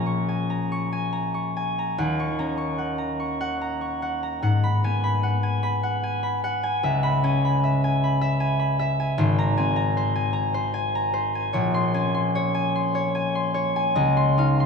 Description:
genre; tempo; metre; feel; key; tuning
classical, solo harp piece; 50 BPM (dotted quarters); 6/8; uneven beats, rubato; Bb minor; A4 = 439 Hz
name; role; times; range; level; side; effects
concert harp; solo; 0.0-14.7 s; Ab1 to Db6; -21 LUFS; left 1 dB; none
room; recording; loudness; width
wet church reverb, RT60 3.6 s; small room ambience; -21 LUFS; side -5 dB against mid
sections
0.0-14.7 A section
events
none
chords
0.0 Bbm7; 2.0 Ebm7; 4.4 Abm7; 6.8 Dbm7; 9.2 Abadd9; 11.5 Bbm9; 14.0 Dbmaj9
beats
0.72 | 1.99 3.19 | 4.43 5.63 | 6.83 8.03 | 9.20 10.37 | 11.54 12.74 | 13.96

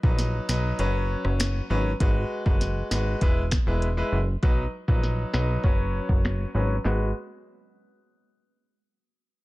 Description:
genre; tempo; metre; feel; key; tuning
dancehall; 99 BPM; 4/4; straight; unclear; A4 = 440 Hz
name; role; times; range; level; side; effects
bright grand piano; accompaniment; 0.0-7.1 s; F#3 to B4; -29 LUFS; left 1 dB; none
plucky analog bass; bass; 0.0-7.1 s; E1 to B1; -25 LUFS; equal; none
afro-pop drum kit; drums; 0.0-7.0 s; finger snaps, handclaps, hi-hat, kick drum, rim click, snare drum; -24 LUFS; equal; none
room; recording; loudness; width
little or no reverb; low-pass filter; -22 LUFS; side -19 dB against mid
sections
0.0-2.0 A section; 2.0-6.9 B section; 6.9-9.3 C section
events
kick muted 0.8-2.0; filter sweep 2.0-6.9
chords
0.0 B; 0.8 F#sus4; 2.0 G#m7; 3.2 E; 4.4 B; 5.6 F#sus4; 6.9 N.C.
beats
0.18 0.79 1.40 | 2.00 2.61 3.21 3.82 | 4.43 5.03 5.64 6.25 | 6.85

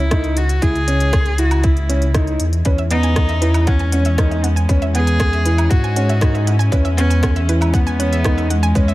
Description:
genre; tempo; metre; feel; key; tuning
piano and strings electronica; 118 BPM; 4/4; straight; unclear; A4 = 441 Hz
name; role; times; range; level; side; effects
warm cello; melody; 0.0-8.9 s; G#3 to G#4; -23 LUFS; equal; none
dark detuned saw bass; bass; 0.0-8.9 s; C#2 to G#2; -17 LUFS; equal; sidechain pumping
warm concert grand piano; riff; 0.1-8.9 s; B3 to E4; -22 LUFS; equal; none
electronic kick drum; drums; 0.1-8.9 s; none; -17 LUFS; equal; overdrive
organic electronic drum kit; drums; 0.1-8.9 s; hi-hat, rim click, woodblock; -26 LUFS; equal; overdrive
rich chamber string section; sustained chords; 2.7-8.9 s; G#3 to C#4; -27 LUFS; left 1 dB; sidechain pumping
wide unison pluck; arpeggios; 2.7-8.9 s; B4 to G#5; -28 LUFS; right 3 dB; sidechain pumping, tape echo
room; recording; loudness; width
digital ambience; none; -14 LUFS; side -17 dB against mid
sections
0.0-8.9 A section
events
none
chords
0.0 C#m; 2.7 Eadd9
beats
0.12 | 0.62 1.13 1.64 2.15 | 2.66 3.17 3.67 4.18 | 4.69 5.20 5.71 6.22 | 6.72 7.23 7.74 8.25 | 8.76

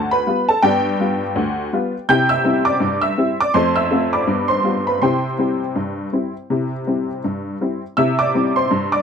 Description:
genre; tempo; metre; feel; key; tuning
ragtime piano; 82 BPM; 2/4; swing 58% on 16ths; C major; A4 = 439 Hz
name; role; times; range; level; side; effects
honky-tonk upright piano; solo; 0.0-9.0 s; D2 to G6; -16 LUFS; equal; none
room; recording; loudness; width
light reverb; close, detailed microphones; -16 LUFS; side -7 dB against mid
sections
0.0-8.0 A section; 8.0-9.0 A section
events
none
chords
0.0 G7; 2.1 C; 3.5 F; 4.3 G7; 5.0 C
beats
| 0.63 1.36 | 2.09 2.82 | 3.54 4.28 | 5.01 5.75 | 6.49 7.22 | 7.96 8.69

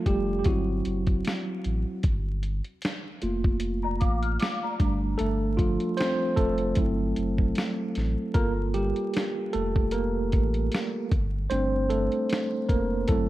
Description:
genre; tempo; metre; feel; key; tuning
lo-fi hip hop; 76 BPM; 4/4; swing 55% on 16ths; G dorian; A4 = 442 Hz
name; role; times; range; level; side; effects
tine electric piano; accompaniment; 0.0-13.3 s; F3 to C5; -27 LUFS; right 1 dB; medium stereo tremolo
warm sub bass; bass; 0.1-13.3 s; F1 to A1; -29 LUFS; equal; none
dusty soul sampler-style drum kit; drums; 0.1-13.3 s; hi-hat, kick drum, snare drum; -27 LUFS; equal; none
worn celesta; second line; 3.8-5.0 s; D5 to F6; -33 LUFS; left 3 dB; ensemble chorus, analog delay
room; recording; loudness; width
moderate plate reverb, RT60 1.9 s; dreamy mix soaked in reverb, vinyl crackle; -24 LUFS; side -15 dB against mid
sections
0.0-13.3 A section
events
tine electric piano solo 0.0-13.3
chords
0.5 F#m7b5; 2.0 Gm7; 4.8 F6/G; 6.8 F#m7b5; 8.4 Gm7; 11.1 F6/G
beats
0.46 1.25 | 2.04 2.83 3.61 4.40 | 5.19 5.98 6.77 7.56 | 8.35 9.14 9.93 10.72 | 11.51 12.30 13.09

